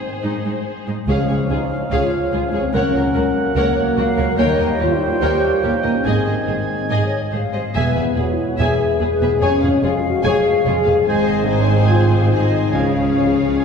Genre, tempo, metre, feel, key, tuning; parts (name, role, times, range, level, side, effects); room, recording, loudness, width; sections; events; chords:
cinematic; 145 BPM; 4/4; straight; Db major; A4 = 439 Hz
rich symphonic violin section; melody; 0.0-13.6 s; Ab4 to Ab5; -29 LUFS; left 3 dB
rich symphonic violin section; second line; 0.0-13.6 s; F4 to E5; -29 LUFS; left 1 dB
warm French horn section; sustained chords; 0.0-13.6 s; Eb3 to Ab4; -20 LUFS; left 3 dB
rich symphonic viola section; accompaniment; 0.2-13.6 s; Eb4 to Bb4; -27 LUFS; left 2 dB
rich symphonic cello section; bass; 0.2-13.6 s; Db2 to Db3; -24 LUFS; right 2 dB
dark clarinet; second line; 1.1-13.6 s; Bb4 to Ab5; -29 LUFS; right 1 dB
warm cor anglais; second line; 1.1-13.6 s; F5 to Ab5; -28 LUFS; right 4 dB
clear trombone section; sustained chords; 1.1-13.6 s; Eb3 to Db4; -27 LUFS; right 2 dB
rich chamber double bass section; bass; 1.1-13.6 s; E1 to Eb2; -22 LUFS; right 2 dB
timpani; percussion; 1.1-1.7, 12.7-13.3 s; Db3; -25 LUFS; left 1 dB
hollow flute section; second line; 1.9-13.6 s; Ab4 to F5; -28 LUFS; left 2 dB
wet concert hall reverb, RT60 2.3 s; heard from further back in the room; -15 LUFS; side -6 dB against mid
0.0-1.1 A section; 1.1-13.6 B section
build-up 0.0-1.1
0.0 Ab; 1.1 Db; 2.7 Gb/Db; 4.4 Eb7; 6.1 Ab; 7.8 E; 9.4 Db/F; 11.1 Ab; 12.7 Db